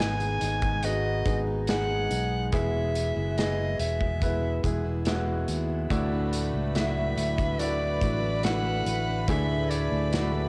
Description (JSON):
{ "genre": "pop ballad", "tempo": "71 BPM", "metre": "4/4", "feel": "straight", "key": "unclear", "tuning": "A4 = 440 Hz", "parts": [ { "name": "breathy soprano saxophone", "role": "melody", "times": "0.0-10.5 s", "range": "D5 to G#5", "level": "-34 LUFS", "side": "equal", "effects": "cassette tape" }, { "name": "clear baby grand piano", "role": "accompaniment", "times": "0.0-10.5 s", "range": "G#2 to B4", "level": "-33 LUFS", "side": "equal", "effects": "cassette tape" }, { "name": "picked plugged-in steel-string acoustic guitar", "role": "arpeggios", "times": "0.0-10.5 s", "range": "G#2 to A4", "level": "-42 LUFS", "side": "equal", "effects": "none" }, { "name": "fingered electric bass", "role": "bass", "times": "0.0-10.5 s", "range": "E1 to D#2", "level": "-32 LUFS", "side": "equal", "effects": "none" }, { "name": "loose indie drum kit", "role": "drums", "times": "0.0-10.3 s", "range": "hi-hat, kick drum, snare drum", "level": "-34 LUFS", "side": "equal", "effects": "cassette tape" }, { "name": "rich studio violin section", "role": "second line", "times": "5.9-10.5 s", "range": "B4 to B5", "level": "-40 LUFS", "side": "equal", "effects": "cassette tape" } ], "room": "light reverb", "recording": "home recording on cassette", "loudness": "-27 LUFS", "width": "mono", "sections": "0.0-10.5 A section", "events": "none", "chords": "0.0 G#m; 2.5 E; 5.9 Dadd9" }